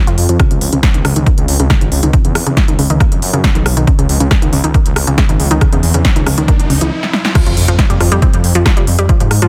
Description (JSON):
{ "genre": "driving peak-time techno", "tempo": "138 BPM", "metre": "4/4", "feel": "straight", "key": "unclear", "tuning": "A4 = 440 Hz", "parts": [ { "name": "analog pluck", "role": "riff", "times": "0.0-9.5 s", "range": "Db3 to F4", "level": "-20 LUFS", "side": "equal", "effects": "chorus, sidechain pumping, digital delay" }, { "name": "analog drone", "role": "drone", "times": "0.1-6.9 s", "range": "F3 to C4", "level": "-29 LUFS", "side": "equal", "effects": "none" }, { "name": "dark detuned saw bass", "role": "bass", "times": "0.1-9.5 s", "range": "F1 to Ab2", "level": "-17 LUFS", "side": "equal", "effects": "sidechain pumping" }, { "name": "techno drum kit", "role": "drums", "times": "0.1-9.5 s", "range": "crash cymbal, hi-hat, rim click, snare drum", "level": "-20 LUFS", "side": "equal", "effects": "studio reverb" }, { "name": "electronic kick drum", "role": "drums", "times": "0.4-9.2 s", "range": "none", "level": "-14 LUFS", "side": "equal", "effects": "studio reverb" }, { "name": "riser and impact", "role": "sound effects", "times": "5.7-9.1 s", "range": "none", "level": "-26 LUFS", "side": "equal", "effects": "none" } ], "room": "digital ambience", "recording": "dense, heavily limited modern master", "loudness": "-12 LUFS", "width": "mono", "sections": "0.0-7.4 A section; 7.4-9.5 B section", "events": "filter sweep on synth arpeggio sound 0.0-7.4; riser 5.7-7.4; stop 6.9-7.4; drum fill 7.0-7.4; band accent 7.2; drop 7.4-9.5; impact 7.4-9.1", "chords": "none" }